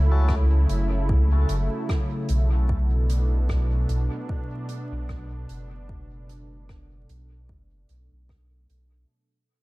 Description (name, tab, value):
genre	ambient dub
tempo	75 BPM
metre	4/4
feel	swing 56% on 16ths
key	B minor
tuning	A4 = 440 Hz
part	warm analog pad	sustained chords	0.0-9.1 s	B2 to A4	-31 LUFS	equal	lush chorus
part	soft dub sub bass	bass	0.0-9.1 s	F#1 to C#2	-22 LUFS	equal	none
part	electronic kick drum	drums	0.3-8.5 s	none	-28 LUFS	equal	none
part	soft-mallet drum kit	drums	0.3-8.9 s	hi-hat, rim click	-42 LUFS	right 1 dB	dub echo
room	small room ambience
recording	echo-heavy mix, vinyl crackle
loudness	-21 LUFS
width	side -20 dB against mid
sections	0.0-9.1 A section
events	fade-out 0.0-9.1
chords	0.0 F#m7; 2.7 Bm7